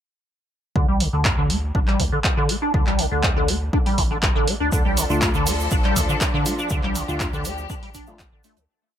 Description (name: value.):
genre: acid house.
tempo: 121 BPM.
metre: 4/4.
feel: straight.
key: D minor pentatonic.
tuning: A4 = 440 Hz.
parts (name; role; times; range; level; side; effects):
liquid acid bass; riff; 0.8-8.6 s; D2 to D4; -24 LUFS; equal; phaser, ensemble chorus, dub echo.
warm sub bass; bass; 0.8-8.7 s; A1 to D2; -27 LUFS; equal; sidechain pumping.
electronic kick drum; drums; 0.8-8.3 s; none; -23 LUFS; equal; none.
punchy analog drum machine; drums; 1.0-8.5 s; handclaps, hi-hat; -25 LUFS; equal; none.
clear studio string section; sustained chords; 4.7-8.7 s; F3 to A4; -29 LUFS; left 1 dB; sidechain pumping.
damped 70s drum kit; drums; 4.7-8.7 s; hi-hat, shaker, snare drum; -36 LUFS; left 1 dB; high-pass filter on hats, high-pass filter on snare, high-pass filter on perc, high-pass filter on room.
cabasa; percussion; 4.7-8.7 s; none; -31 LUFS; right 6 dB; none.
bright tine electric piano; stabs; 5.1-8.6 s; A3 to F4; -30 LUFS; left 2 dB; phaser, dub echo.
room: light reverb, small room ambience.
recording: none.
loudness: -18 LUFS.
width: side -10 dB against mid.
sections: 0.8-8.7 groove.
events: fade-out 6.0-8.7.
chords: 0.8 Dm.